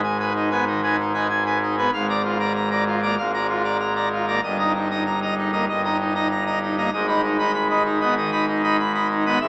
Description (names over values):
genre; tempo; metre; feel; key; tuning
classical, organ toccata; 96 BPM; 4/4; straight; G# minor; A4 = 440 Hz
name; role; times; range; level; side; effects
pipe organ, full organ; solo; 0.0-9.5 s; G1 to B5; -22 LUFS; equal; none
room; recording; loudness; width
wet cathedral reverb, RT60 5.8 s; in a vast, echoing space, small speaker sound; -22 LUFS; mono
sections
0.0-9.5 A section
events
none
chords
0.0 G#m; 1.9 A#7/G#; 4.4 D#/G; 6.9 G#m